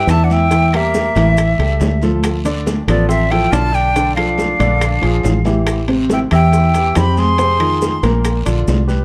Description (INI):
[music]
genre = Afro-Cuban jazz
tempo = 140 BPM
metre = 4/4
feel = straight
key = unclear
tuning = A4 = 440 Hz
[part]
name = breathy bright jazz flute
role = melody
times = 0.0-8.0 s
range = D5 to C6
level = -20 LUFS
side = equal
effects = tape echo
[part]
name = warm tenor saxophone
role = second line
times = 0.0-8.0 s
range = Bb3 to Ab4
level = -26 LUFS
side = equal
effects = none
[part]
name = warm upright piano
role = accompaniment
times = 0.0-9.0 s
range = Bb2 to E5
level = -21 LUFS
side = equal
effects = none
[part]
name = fingered electric bass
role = bass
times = 0.0-9.0 s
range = A1 to F2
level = -19 LUFS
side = equal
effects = none
[part]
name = bongos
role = percussion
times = 0.1-8.9 s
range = none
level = -28 LUFS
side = equal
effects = none
[part]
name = claves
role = percussion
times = 0.1-8.5 s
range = none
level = -35 LUFS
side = equal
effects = none
[part]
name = congas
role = percussion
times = 0.1-9.0 s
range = none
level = -27 LUFS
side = equal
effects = none
[part]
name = guiro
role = percussion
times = 0.1-9.0 s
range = none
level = -37 LUFS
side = equal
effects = none
[part]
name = maracas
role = percussion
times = 0.1-9.0 s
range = none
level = -38 LUFS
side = equal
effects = none
[part]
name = timbales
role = percussion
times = 0.1-8.9 s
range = none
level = -30 LUFS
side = equal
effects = none
[sound]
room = light reverb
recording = dark, warm production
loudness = -15 LUFS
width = mono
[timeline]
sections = 0.0-9.0 A section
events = drum fill 5.2-5.7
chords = 0.0 C (rootless); 0.5 Edim; 1.4 A7; 2.2 Dm; 4.0 Bm7b5; 4.8 Bb7#11; 5.7 Am7; 7.4 Fm7; 8.2 Bbadd9